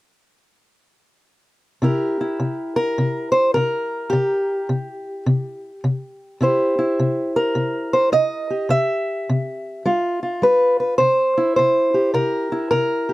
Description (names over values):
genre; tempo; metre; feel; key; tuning
acoustic country blues, solo or duo; 105 BPM; 4/4; swing 64% on 8ths; C mixolydian; A4 = 440 Hz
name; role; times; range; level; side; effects
fingerpicked steel-string acoustic guitar; solo; 1.8-13.1 s; C3 to E5; -17 LUFS; equal; none
room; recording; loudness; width
little or no reverb; close, detailed microphones; -18 LUFS; side -18 dB against mid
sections
1.8-11.0 A section; 11.0-13.1 B section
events
none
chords
1.8 C7; 9.9 G7; 11.0 C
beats
| 1.84 2.41 2.98 3.56 | 4.13 4.70 5.28 5.85 | 6.42 6.99 7.57 8.14 | 8.71 9.28 9.86 10.43 | 11.00 11.57 12.15 12.72